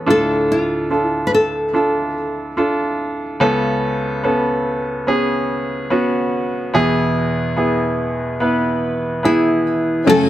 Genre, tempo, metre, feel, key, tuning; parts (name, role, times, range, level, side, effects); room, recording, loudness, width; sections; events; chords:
pop ballad; 72 BPM; 4/4; straight; A4 = 436 Hz
nylon-string guitar; melody; 0.0-3.0, 9.3-10.3 s; E4 to B4; -17 LUFS; equal
clear baby grand piano; accompaniment; 0.0-10.3 s; C#2 to B4; -17 LUFS; equal
dark French horn section; second line; 10.1-10.3 s; C#4; -17 LUFS; left 2 dB
warm studio string section; sustained chords; 10.1-10.3 s; F#2 to G#5; -23 LUFS; left 3 dB
picked steel-string acoustic guitar; arpeggios; 10.1-10.3 s; F#3; -19 LUFS; left 8 dB
light reverb; -16 LUFS; side -13 dB against mid
0.0-10.1 A section
0.1 Dm; 3.4 Aadd9/C#; 6.7 E